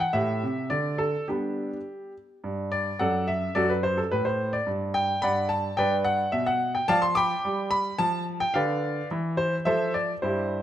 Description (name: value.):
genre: classical-period piano sonatina.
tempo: 108 BPM.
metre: 2/4.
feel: straight.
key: G major.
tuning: A4 = 440 Hz.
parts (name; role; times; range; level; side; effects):
clear baby grand piano; solo; 0.0-10.6 s; F#2 to D6; -24 LUFS; equal; none.
room: moderate recital hall reverb, RT60 1.7 s.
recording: close, detailed microphones.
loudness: -24 LUFS.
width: side -11 dB against mid.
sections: 0.0-2.4 A section; 2.4-10.6 B section.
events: none.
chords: 0.1 Am7; 0.7 N.C.; 1.3 G; 2.4 N.C.; 3.0 D/F#; 3.6 F#dim; 4.7 N.C.; 5.2 D/G; 5.8 G; 6.9 Dm/F; 7.4 G; 8.0 Dm6; 9.1 N.C.; 9.7 Dm7/F.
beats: | 0.15 0.72 | 1.30 1.88 | 2.45 3.01 | 3.57 4.12 | 4.68 5.24 | 5.79 6.33 | 6.89 7.44 | 7.99 8.54 | 9.10 9.66 | 10.24.